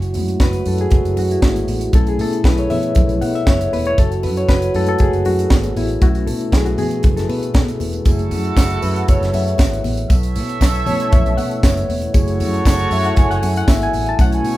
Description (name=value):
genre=disco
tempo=118 BPM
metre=4/4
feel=straight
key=unclear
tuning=A4 = 440 Hz
part: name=mellow French horn section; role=sustained chords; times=0.0-14.6 s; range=F#3 to F#4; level=-25 LUFS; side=equal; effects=none
part: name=fingered electric bass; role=bass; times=0.0-14.6 s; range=E1 to B2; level=-21 LUFS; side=equal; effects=none
part: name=tight funk drum kit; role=drums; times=0.0-14.6 s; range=hi-hat, kick drum, snare drum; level=-16 LUFS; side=equal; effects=none
part: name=bright reed electric piano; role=accompaniment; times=0.1-14.6 s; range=G#3 to A5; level=-21 LUFS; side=left 2 dB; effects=fast tremolo
part: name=congas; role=percussion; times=0.2-14.3 s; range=none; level=-29 LUFS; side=left 1 dB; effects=none
part: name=clear horn section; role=stabs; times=8.1-14.6 s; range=E4 to E5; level=-24 LUFS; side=right 2 dB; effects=none
part: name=tambourine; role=percussion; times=8.1-14.6 s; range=none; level=-38 LUFS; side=right 6 dB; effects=none
room=light reverb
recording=band playing live in one room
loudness=-14 LUFS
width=side -16 dB against mid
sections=0.0-14.6 A section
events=reed electric piano solo 0.0-14.6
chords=0.0 F#m7; 1.9 B9sus4; 4.0 F#m7; 6.0 B9sus4; 8.1 F#m7; 10.1 B9sus4; 12.1 F#m7